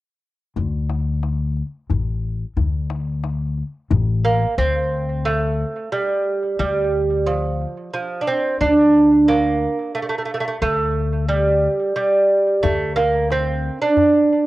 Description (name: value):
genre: Persian modal ensemble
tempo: 90 BPM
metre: 3/4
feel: straight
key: D dastgah shur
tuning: A4 = 442 Hz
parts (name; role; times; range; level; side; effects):
- upright bass; bass; 0.6-13.7 s; A1 to D2; -22 LUFS; left 2 dB; none
- tombak; percussion; 0.6-4.1, 12.6-14.1 s; none; -25 LUFS; left 6 dB; none
- lute; melody; 4.2-14.5 s; F3 to D4; -17 LUFS; right 2 dB; cassette tape, analog delay
room: moderate spring reverb, RT60 1.3 s, small room reverb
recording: home recording on cassette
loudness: -17 LUFS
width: side -16 dB against mid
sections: 0.6-4.6 A section; 4.6-14.5 B section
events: none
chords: none